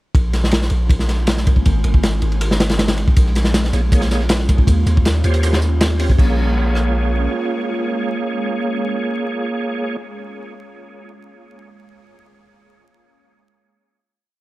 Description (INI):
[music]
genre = drum and bass, jungle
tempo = 159 BPM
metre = 4/4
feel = straight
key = Bb dorian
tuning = A4 = 441 Hz
[part]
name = ethereal airy pad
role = sustained chords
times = 0.9-10.0 s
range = G3 to G4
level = -27 LUFS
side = equal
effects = ensemble chorus, built-in reverb, phaser
[part]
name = long sustained 808-style bass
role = bass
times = 0.1-7.3 s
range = Ab1 to Eb2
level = -17 LUFS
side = equal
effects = none
[part]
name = crunchy breakbeat drum kit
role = drums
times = 0.1-6.8 s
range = crash cymbal, kick drum, ride cymbal, rim click, snare drum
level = -17 LUFS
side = equal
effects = none
[part]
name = dusty soul sampler-style drum kit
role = drums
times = 3.2-6.1 s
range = hi-hat, snare drum, tambourine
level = -32 LUFS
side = right 2 dB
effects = high-pass filter on perc, high-pass filter on snare, high-pass filter on hats
[part]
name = bright tonewheel organ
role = stabs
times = 3.7-10.0 s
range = Bb3 to Db5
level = -23 LUFS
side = right 2 dB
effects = chorus vibrato, fast rotary speaker, dub echo
[sound]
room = studio reverb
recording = vinyl crackle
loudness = -15 LUFS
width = side -18 dB against mid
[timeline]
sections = 0.1-6.2 drop; 6.2-9.2 final chord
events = drop 0.1-6.2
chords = 0.1 Bbm7; 1.7 Abmaj7; 3.2 Bbm7; 4.7 Eb13; 6.2 Bbm7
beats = | 0.15 0.52 0.90 1.28 | 1.66 2.03 2.41 2.79 | 3.17 3.54 3.92 4.30 | 4.67 5.05 5.43 5.81 | 6.18 6.56 6.94 7.32 | 7.69 8.07 8.45 8.83